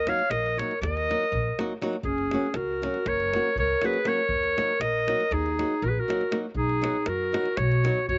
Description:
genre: balkan folk, Balkan wedding band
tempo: 240 BPM (eighths)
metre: 9/8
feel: straight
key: Eb minor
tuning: A4 = 439 Hz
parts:
  - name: bright clarinet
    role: melody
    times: 0.0-8.2 s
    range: Ab4 to F5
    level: -30 LUFS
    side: equal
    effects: slapback echo
  - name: dark clarinet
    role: second line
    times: 0.0-8.2 s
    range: Db4 to Db5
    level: -32 LUFS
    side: equal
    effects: slapback echo
  - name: upright bass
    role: bass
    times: 0.0-8.2 s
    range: Gb1 to F#2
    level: -33 LUFS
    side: equal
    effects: none
  - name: flamenco guitar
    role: accompaniment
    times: 0.1-8.0 s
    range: Gb3 to Gb4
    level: -34 LUFS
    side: equal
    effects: slapback echo
  - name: davul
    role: percussion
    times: 0.1-8.2 s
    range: none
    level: -38 LUFS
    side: equal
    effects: none
room: little or no reverb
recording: recorded outdoors, with no room sound, nothing above 7.8 kHz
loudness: -26 LUFS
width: mono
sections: 0.0-2.0 A section; 2.0-8.2 A section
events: none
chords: 0.0 Ebm; 2.0 Gb; 4.3 Ebm; 6.5 B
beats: 0.04 0.29 0.54 0.79 1.04 1.29 1.54 1.79 | 2.04 2.29 2.54 2.79 3.04 3.29 3.54 3.79 4.04 | 4.29 4.54 4.79 5.04 5.29 5.54 5.79 6.04 6.29 | 6.54 6.79 7.04 7.29 7.54 7.79 8.04

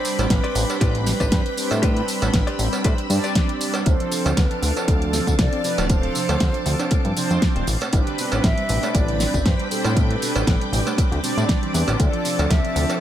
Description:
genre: nu-disco, nu disco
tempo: 118 BPM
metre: 4/4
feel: swing 55% on 16ths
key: unclear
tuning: A4 = 440 Hz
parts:
  - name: mellow hollow concert flute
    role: melody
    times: 0.0-13.0 s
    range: A4 to E5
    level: -29 LUFS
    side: equal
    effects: tape echo
  - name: mellow synth brass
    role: accompaniment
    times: 0.0-13.0 s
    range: F3 to B5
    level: -26 LUFS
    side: right 1 dB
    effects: chorus, sidechain pumping
  - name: string machine, full ensemble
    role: sustained chords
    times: 0.0-13.0 s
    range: C4 to E6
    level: -30 LUFS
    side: equal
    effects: ensemble chorus, sidechain pumping
  - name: direct-recorded clean electric guitar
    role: riff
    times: 0.0-3.8 s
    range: G4 to D5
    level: -32 LUFS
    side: left 5 dB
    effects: lush chorus
  - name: pop drum kit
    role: drums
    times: 0.0-13.0 s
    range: hi-hat, snare drum, tambourine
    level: -26 LUFS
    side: equal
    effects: overdrive
  - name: fat analog bass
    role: bass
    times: 0.2-12.9 s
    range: D1 to A2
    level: -23 LUFS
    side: equal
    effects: sidechain pumping
  - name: cowbell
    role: percussion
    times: 0.2-13.0 s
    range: none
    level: -30 LUFS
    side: right 3 dB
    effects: none
  - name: electronic kick drum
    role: drums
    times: 0.3-12.6 s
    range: none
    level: -20 LUFS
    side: equal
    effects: overdrive
  - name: wide unison pluck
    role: arpeggios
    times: 3.9-13.0 s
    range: B2 to D4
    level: -34 LUFS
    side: right 1 dB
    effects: none
room: digital ambience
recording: none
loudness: -18 LUFS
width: side -11 dB against mid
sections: 0.0-13.0 A section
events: none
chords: 0.0 Am11; 3.9 Dm7; 7.7 Am11; 12.0 Dm7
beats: 0.30 0.81 1.32 | 1.83 2.33 2.84 3.35 | 3.86 4.37 4.88 5.39 | 5.89 6.40 6.91 7.42 | 7.93 8.44 8.95 9.45 | 9.96 10.47 10.98 11.49 | 12.00 12.51

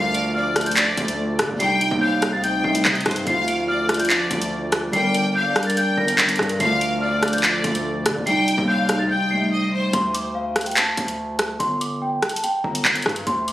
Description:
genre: hip hop, drill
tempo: 144 BPM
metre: 4/4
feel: half-time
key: D phrygian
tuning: A4 = 440 Hz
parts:
  - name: large celesta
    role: melody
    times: 0.0-13.5 s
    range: F5 to D7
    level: -24 LUFS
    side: left 1 dB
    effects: low-pass filter
  - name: bright studio violin section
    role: second line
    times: 0.0-9.9 s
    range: C5 to G5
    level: -26 LUFS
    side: right 1 dB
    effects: ping-pong delay
  - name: warbly lo-fi synth keys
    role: accompaniment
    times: 0.0-10.0 s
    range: C3 to Bb4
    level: -25 LUFS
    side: equal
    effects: chorus, low-pass filter
  - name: dark analog pad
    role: sustained chords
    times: 0.0-9.9 s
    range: F3 to Eb5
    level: -29 LUFS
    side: equal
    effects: chorus
  - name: distorted 808-style bass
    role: bass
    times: 0.0-13.5 s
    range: G1 to D3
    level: -28 LUFS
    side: equal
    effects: distortion
  - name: drill drum kit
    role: drums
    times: 0.1-13.5 s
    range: handclaps, hi-hat, rim click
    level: -21 LUFS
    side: equal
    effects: overdrive
room: light reverb, digital ambience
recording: recorded on a phone in the room, studio reverb, compression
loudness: -18 LUFS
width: side -14 dB against mid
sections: 0.0-9.9 A section; 9.9-13.5 B section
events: drums muted 9.1-9.9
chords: 0.0 Dm; 1.6 Cm; 3.3 Dm; 4.9 Gm; 6.6 Dm; 8.3 Cm; 9.9 D5; 11.6 Gm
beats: 0.35 0.77 1.18 | 1.60 2.02 2.43 2.85 | 3.27 3.68 4.10 4.52 | 4.93 5.35 5.77 6.18 | 6.60 7.02 7.43 7.85 | 8.27 8.68 9.10 9.52 | 9.93 10.35 10.77 11.18 | 11.60 12.02 12.43 12.85 | 13.27

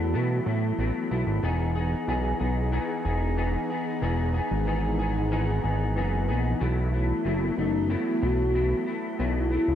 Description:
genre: indie pop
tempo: 93 BPM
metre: 4/4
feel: straight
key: E major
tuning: A4 = 443 Hz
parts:
  - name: warm velvety synth lead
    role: melody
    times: 0.0-1.1, 6.9-9.8 s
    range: D#4 to F#4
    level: -29 LUFS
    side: left 2 dB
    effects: analog chorus
  - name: electric guitar through a small old amp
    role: accompaniment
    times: 0.0-9.8 s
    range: B2 to G#4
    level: -30 LUFS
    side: left 2 dB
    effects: analog chorus, warbly pitch drift
  - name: string machine, violas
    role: sustained chords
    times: 0.0-9.8 s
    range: E3 to G#4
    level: -34 LUFS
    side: right 1 dB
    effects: ensemble chorus
  - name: fat analog bass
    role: bass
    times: 0.0-9.8 s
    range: E1 to B2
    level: -26 LUFS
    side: equal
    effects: none
room: light reverb, digital ambience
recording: dark, warm production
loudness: -24 LUFS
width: side -10 dB against mid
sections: 0.0-9.8 A section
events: none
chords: 0.0 B7sus4; 1.4 Emaj7; 6.6 B7sus4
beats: 0.15 0.79 | 1.44 2.08 2.73 3.38 | 4.02 4.67 5.32 5.96 | 6.61 7.25 7.90 8.55 | 9.19

